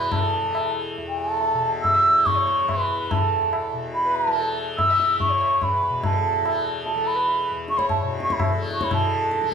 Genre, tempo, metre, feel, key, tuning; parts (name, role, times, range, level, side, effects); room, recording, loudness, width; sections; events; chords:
indian classical, Hindustani; 143 BPM; 7/4; straight; A4 = 441 Hz
mellow hollow bansuri; melody; 0.0-9.5 s; G5 to E6; -21 LUFS; right 1 dB
rich sarangi; second line; 0.0-9.5 s; G4 to E5; -32 LUFS; left 6 dB
tanpura; drone; 0.0-9.5 s; E2 to E3; -30 LUFS; left 2 dB
tabla; percussion; 0.1-9.5 s; -28 LUFS; left 3 dB
wet large studio reverb, RT60 1.2 s; band playing live in one room; -20 LUFS; side -7 dB against mid
0.0-8.9 A section
speeding up 0.0-9.5